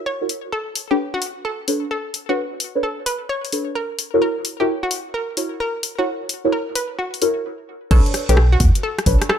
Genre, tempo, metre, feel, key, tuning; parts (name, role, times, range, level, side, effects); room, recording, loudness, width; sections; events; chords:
UK garage, two-step garage; 130 BPM; 4/4; swing 66% on 16ths; B minor; A4 = 436 Hz
hollow square pluck; melody; 0.1-9.4 s; F#4 to C#5; -26 LUFS; equal; chorus, ping-pong delay
deep mellow chord stab; stabs; 0.2-9.2 s; D4 to C#5; -22 LUFS; equal; chorus, phaser, dub echo
house drum kit; drums; 0.3-9.4 s; crash cymbal, hi-hat, rim click; -23 LUFS; left 2 dB; overdrive
organ-like FM bass; bass; 7.9-9.2 s; B1 to E2; -14 LUFS; equal; tube saturation
electronic kick drum; drums; 7.9-9.2 s; -16 LUFS; equal
light reverb; -18 LUFS; side -9 dB against mid
0.0-7.9 A section; 7.9-9.4 B section
filter sweep on synth stab 0.0-7.9; stop 7.4-7.9; drop 7.9-9.4
0.0 F#7; 0.5 Bm9; 4.0 F#7; 7.9 Bm9